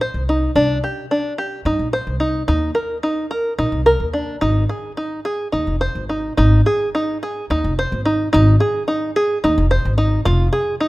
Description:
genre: contemporary instrumental, chamber music in an uneven meter.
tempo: 217 BPM (eighths).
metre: 7/8.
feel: straight.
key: Ab lydian.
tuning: A4 = 440 Hz.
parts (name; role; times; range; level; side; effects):
open-back banjo; arpeggios; 0.0-10.9 s; D4 to C5; -18 LUFS; equal; none.
upright bass; bass; 0.0-10.5 s; F1 to G2; -18 LUFS; equal; none.
room: light reverb.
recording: close, detailed microphones.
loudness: -16 LUFS.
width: side -19 dB against mid.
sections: 0.0-6.4 A section; 6.4-10.9 A section.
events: none.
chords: 0.0 Cmadd9; 2.5 Eb5; 4.4 Ab5; 10.3 Fm.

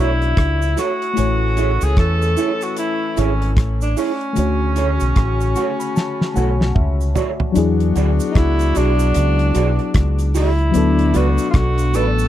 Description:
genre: lovers rock reggae.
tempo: 75 BPM.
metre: 4/4.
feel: swing 61% on 16ths.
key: unclear.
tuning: A4 = 440 Hz.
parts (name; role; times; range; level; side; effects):
clear tenor saxophone; melody; 0.0-12.3 s; C#4 to A4; -22 LUFS; right 1 dB; tape echo.
clear saxophone section; second line; 0.0-11.9 s; A2 to A4; -27 LUFS; left 4 dB; none.
mellow FM electric piano; accompaniment; 0.0-12.3 s; D3 to C#6; -23 LUFS; left 5 dB; chorus.
electric guitar through a small old amp; stabs; 0.0-12.1 s; E4 to D5; -23 LUFS; right 7 dB; ensemble chorus.
deep dub fingered electric bass; bass; 0.0-12.3 s; G#1 to E2; -17 LUFS; equal; none.
damped 70s drum kit; drums; 0.2-12.2 s; hi-hat, kick drum, rim click, snare drum, toms; -18 LUFS; equal; none.
cabasa; percussion; 0.6-12.3 s; none; -37 LUFS; right 10 dB; none.
room: studio reverb.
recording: dry, close 1970s-style studio recording.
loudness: -15 LUFS.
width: side -12 dB against mid.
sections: 0.0-7.6 A section; 7.6-12.3 B section.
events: FM electric piano fill 5.2-7.6; drum fill 6.0-7.6.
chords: 0.0 Dmaj7; 1.2 Amaj7; 4.4 Dmaj7; 7.6 E9; 10.7 D6.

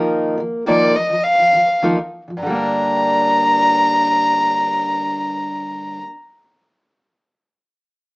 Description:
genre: acoustic pop.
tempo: 98-110 BPM.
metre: 4/4.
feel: straight.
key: G minor.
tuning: A4 = 440 Hz.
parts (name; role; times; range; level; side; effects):
fingerpicked steel-string acoustic guitar; accompaniment; 0.0-6.1 s; G2 to Bb4; -20 LUFS; equal; none.
warm violin; melody; 0.7-6.0 s; D5 to Bb5; -16 LUFS; left 1 dB; none.
room: moderate studio reverb, RT60 0.6 s.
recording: small speaker sound.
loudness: -14 LUFS.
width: side -28 dB against mid.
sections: 0.0-2.4 A section; 2.4-7.3 B section.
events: slowing down 0.0-2.4.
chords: 0.0 Ebsus2; 2.4 Gm.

